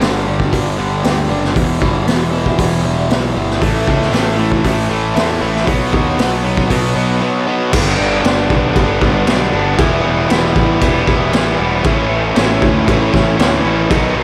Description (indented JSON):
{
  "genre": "quiet-loud alternative rock",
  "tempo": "117 BPM",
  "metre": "4/4",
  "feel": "straight",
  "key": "G lydian",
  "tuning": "A4 = 440 Hz",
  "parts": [
    { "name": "clean electric guitar", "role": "arpeggios", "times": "0.0-7.7 s", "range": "E2 to G4", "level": "-26 LUFS", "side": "equal", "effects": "none" },
    { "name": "fuzz guitar", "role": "riff", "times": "0.0-14.2 s", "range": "E2 to E4", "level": "-20 LUFS", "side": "equal", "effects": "distortion" },
    { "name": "fuzz picked electric bass", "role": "bass", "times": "0.0-14.2 s", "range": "E1 to E2", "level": "-22 LUFS", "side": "equal", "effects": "overdrive" },
    { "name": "raw garage drum kit", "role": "drums", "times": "0.0-14.0 s", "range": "crash cymbal, hi-hat, kick drum, snare drum", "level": "-19 LUFS", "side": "equal", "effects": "none" },
    { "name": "distorted electric guitar", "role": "riff", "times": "3.6-14.2 s", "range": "G2 to E4", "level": "-21 LUFS", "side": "equal", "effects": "overdrive" }
  ],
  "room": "light reverb, small room reverb",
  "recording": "none",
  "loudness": "-14 LUFS",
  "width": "mono",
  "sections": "0.0-7.7 A section; 7.7-14.2 B section",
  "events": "none",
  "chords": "0.0 G; 1.6 Em; 3.6 A; 5.7 B; 7.7 G; 9.8 Em; 11.8 A"
}